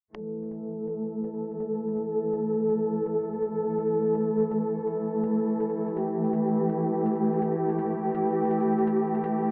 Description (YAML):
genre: half-time drum and bass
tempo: 165 BPM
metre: 4/4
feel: half-time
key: unclear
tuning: A4 = 440 Hz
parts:
  - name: electronic hi-hat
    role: drums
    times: 0.1-9.3 s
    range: none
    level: -57 LUFS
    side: equal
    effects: none
  - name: rich studio cello section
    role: sustained chords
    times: 0.2-9.5 s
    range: E3 to A4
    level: -28 LUFS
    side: equal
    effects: low-pass filter
room: wet plate reverb, RT60 2.0 s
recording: dreamy mix soaked in reverb, low-pass filter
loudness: -27 LUFS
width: mono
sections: 0.2-9.5 A section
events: filter sweep on cello section 0.2-9.5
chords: 0.2 A5